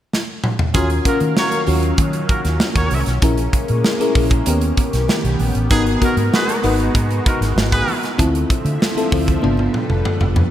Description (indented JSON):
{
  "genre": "polished 1980s jazz-funk pop",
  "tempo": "97 BPM",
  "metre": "4/4",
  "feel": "straight",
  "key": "Eb minor",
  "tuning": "A4 = 440 Hz",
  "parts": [
    { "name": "modern studio drum kit", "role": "drums", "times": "0.1-10.5 s", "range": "hi-hat, kick drum, snare drum, toms", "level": "-19 LUFS", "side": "equal", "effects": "gated reverb" },
    { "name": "warm horn section", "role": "second line", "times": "0.7-8.0 s", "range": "Bb3 to Db5", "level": "-23 LUFS", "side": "right 1 dB", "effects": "none" },
    { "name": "bell-like FM electric piano", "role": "accompaniment", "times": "0.7-10.5 s", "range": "Cb4 to Db5", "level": "-20 LUFS", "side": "left 2 dB", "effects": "analog chorus" },
    { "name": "lush unison pad", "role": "sustained chords", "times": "1.1-10.5 s", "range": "D3 to F5", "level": "-27 LUFS", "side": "right 1 dB", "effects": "chorus, phaser" },
    { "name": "vintage muted fingered electric bass", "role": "bass", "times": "0.7-10.5 s", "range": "F1 to Eb3", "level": "-19 LUFS", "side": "equal", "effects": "none" },
    { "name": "congas", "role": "percussion", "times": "0.7-10.5 s", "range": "none", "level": "-33 LUFS", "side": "right 6 dB", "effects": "none" }
  ],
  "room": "moderate lush hall reverb, RT60 1.8 s, studio ambience",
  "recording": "bright 1980s-style digital production",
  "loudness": "-15 LUFS",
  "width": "side -12 dB against mid",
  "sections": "0.7-10.5 A section",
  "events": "drum fill 0.1-0.7, 9.4-10.5",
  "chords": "0.0 N.C.; 0.7 Ebm9; 3.2 Bbm7b5; 4.5 Eb7b13; 5.7 Abm7; 8.2 Dm9; 9.4 G9"
}